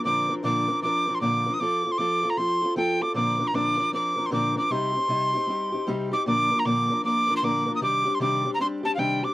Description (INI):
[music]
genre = celtic folk, Celtic hornpipe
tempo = 154 BPM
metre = 4/4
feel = swing 64% on 8ths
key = unclear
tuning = A4 = 440 Hz
[part]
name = mid whistle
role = melody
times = 0.0-9.3 s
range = F5 to Eb6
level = -24 LUFS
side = equal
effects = none
[part]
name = fingerpicked steel-string acoustic guitar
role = accompaniment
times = 0.0-9.3 s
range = Bb2 to Bb4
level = -26 LUFS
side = left 1 dB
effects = none
[sound]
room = light reverb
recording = vinyl crackle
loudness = -22 LUFS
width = side -17 dB against mid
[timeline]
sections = 0.0-6.3 A section; 6.3-9.3 A section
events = none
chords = 0.0 Bbadd9; 1.6 F; 3.2 Bbadd9; 4.7 Cm; 6.3 Bb; 7.8 Cmadd9